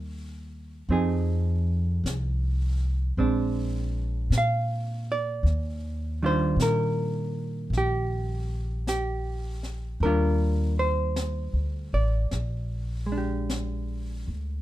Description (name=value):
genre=jazz ballad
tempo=53 BPM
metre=4/4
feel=swing 66% on 8ths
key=Eb major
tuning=A4 = 435 Hz
part: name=hollow-body jazz guitar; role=accompaniment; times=0.0-14.6 s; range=Eb3 to F5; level=-28 LUFS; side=right 1 dB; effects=none
part: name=upright bass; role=bass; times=0.0-14.6 s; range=A1 to Bb2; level=-27 LUFS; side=equal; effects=none
part: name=jazz brush drum kit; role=drums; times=0.9-14.6 s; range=brushed snare drum, hi-hat, snare drum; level=-38 LUFS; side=left 2 dB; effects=none
room=little or no reverb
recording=minimal, uncompressed stereo recording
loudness=-25 LUFS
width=side -14 dB against mid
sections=0.0-14.6 A section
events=none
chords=0.0 Cm7 (rootless); 0.9 Fm7; 3.2 Bb9; 5.5 Ebmaj9; 12.3 Bb6